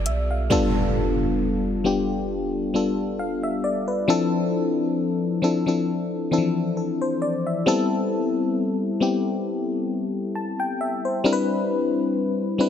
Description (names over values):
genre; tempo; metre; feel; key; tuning
R&B; 67 BPM; 4/4; swing 54% on 16ths; unclear; A4 = 440 Hz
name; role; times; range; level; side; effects
FM electric piano; accompaniment; 0.0-12.7 s; E3 to A5; -21 LUFS; left 2 dB; chorus
clean 808-style bass; bass; 0.0-0.5 s; B1; -24 LUFS; right 1 dB; none
impact; sound effects; 0.5-4.1 s; none; -28 LUFS; right 2 dB; none
room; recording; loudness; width
light reverb; dense, heavily limited modern master; -21 LUFS; side -9 dB against mid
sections
0.5-12.7 A section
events
impact 0.5-4.1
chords
0.0 G9; 4.1 Dm9/F; 7.7 Am9; 11.2 Cmaj9